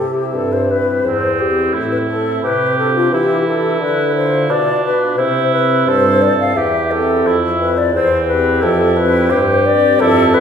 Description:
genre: classical, baroque-style sonata movement with continuo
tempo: 87 BPM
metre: 4/4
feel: straight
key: C major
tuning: A4 = 440 Hz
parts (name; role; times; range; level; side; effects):
- mellow hollow silver concert flute; melody; 0.0-10.4 s; F4 to F5; -16 LUFS; left 3 dB; none
- pipe organ, foundations; accompaniment; 0.0-10.4 s; E2 to G4; -21 LUFS; left 1 dB; none
- dark bassoon; bass; 0.0-10.4 s; E2 to E3; -19 LUFS; right 2 dB; none
- warm oboe; second line; 1.1-10.4 s; C4 to A4; -19 LUFS; right 4 dB; none
room: wet recital hall reverb, RT60 1.6 s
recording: heard from further back in the room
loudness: -12 LUFS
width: side -7 dB against mid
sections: 0.0-10.4 A section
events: none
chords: 0.0 C; 2.4 G7/C; 5.2 C/E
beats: 0.35 1.04 1.74 | 2.43 3.13 3.81 4.50 | 5.19 5.87 6.56 7.25 | 7.94 8.63 9.32 10.01

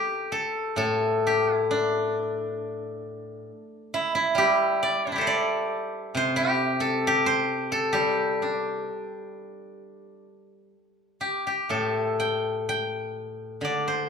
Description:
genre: chinese traditional, Chinese solo plucked strings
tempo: 66 BPM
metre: 4/4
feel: uneven beats, rubato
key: G zhi mode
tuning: A4 = 440 Hz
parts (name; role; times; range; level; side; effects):
- steel-string zither; solo; 0.0-14.1 s; A2 to G5; -24 LUFS; left 1 dB; none
room: moderate recital hall reverb, RT60 1.4 s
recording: minimal, uncompressed stereo recording, lossy compression artefacts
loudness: -23 LUFS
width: side -6 dB against mid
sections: 0.0-14.1 A section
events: none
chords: none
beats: | 0.78 1.70 2.60 3.49 | 4.37 5.26 6.15 7.06 | 7.96 8.87 9.79 10.74 | 11.71 12.68 13.62

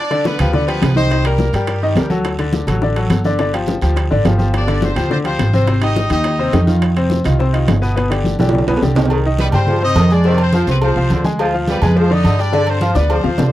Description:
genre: latin, salsa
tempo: 210 BPM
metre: 4/4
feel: straight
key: C harmonic minor from 9.1 s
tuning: A4 = 440 Hz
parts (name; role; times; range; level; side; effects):
- brilliant horn section; melody; 0.0-2.1, 4.6-6.6, 9.4-13.5 s; G3 to Eb5; -22 LUFS; equal; none
- bright grand piano; accompaniment; 0.1-13.5 s; B2 to D6; -19 LUFS; left 2 dB; none
- bongos and cowbell; percussion; 0.1-13.5 s; none; -24 LUFS; left 6 dB; none
- congas; percussion; 0.1-13.5 s; none; -21 LUFS; equal; none
- timbales and agogo bells; percussion; 0.1-13.5 s; none; -25 LUFS; right 5 dB; none
- guiro; percussion; 0.3-13.5 s; none; -37 LUFS; right 6 dB; none
- upright bass; bass; 0.4-13.5 s; G1 to G2; -16 LUFS; right 1 dB; none
- bright trombone section; second line; 9.1-13.5 s; D3 to G3; -22 LUFS; right 2 dB; none
room: little or no reverb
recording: dry, close 1970s-style studio recording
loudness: -13 LUFS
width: side -14 dB against mid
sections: 0.0-9.1 A section; 9.1-13.5 B section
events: drum fill 8.2-9.1, 13.0-13.5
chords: 0.0 G7; 1.1 Cm7; 2.2 D; 3.4 G5; 4.5 G7sus4; 5.7 Abmaj7; 6.8 F5; 8.0 G; 9.1 Cm; 10.2 Fm; 11.4 Dm7b5; 12.5 G7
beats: 0.25 0.54 0.82 | 1.11 1.39 1.68 1.96 | 2.25 2.54 2.82 3.11 | 3.39 3.68 3.96 4.25 | 4.54 4.82 5.11 5.39 | 5.68 5.96 6.25 6.54 | 6.82 7.11 7.39 7.68 | 7.96 8.25 8.54 8.82 | 9.11 9.39 9.68 9.96 | 10.25 10.53 10.82 11.11 | 11.39 11.68 11.96 12.25 | 12.53 12.82 13.10 13.39

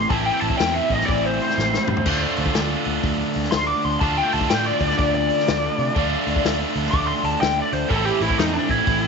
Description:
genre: blues rock power trio and southern rock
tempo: 123 BPM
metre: 4/4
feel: swing 63% on 8ths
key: unclear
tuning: A4 = 440 Hz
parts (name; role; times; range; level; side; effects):
- lead guitar through a small cranked amp; melody; 0.0-9.1 s; D4 to D6; -22 LUFS; left 1 dB; wah, overdrive
- cranked stack guitar; riff; 0.0-9.1 s; A2 to F4; -23 LUFS; right 1 dB; overdrive, spring reverb
- vintage muted picked electric bass; bass; 0.0-9.1 s; A1 to C3; -27 LUFS; equal; none
- vintage drum kit; drums; 0.1-9.0 s; crash cymbal, hi-hat, kick drum, snare drum, toms; -26 LUFS; left 3 dB; none
room: light reverb, studio reverb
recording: 1960s-style stereo, nothing above 7.8 kHz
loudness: -18 LUFS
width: side -5 dB against mid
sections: 0.0-9.1 A section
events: lead electric guitar solo 0.0-9.1; drum fill 1.6-2.1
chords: 0.0 Am; 2.1 Dm; 7.9 Am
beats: | 0.12 0.60 1.09 1.58 | 2.07 2.56 3.05 3.53 | 4.02 4.51 4.99 5.48 | 5.96 6.45 6.93 7.42 | 7.90 8.38 8.87

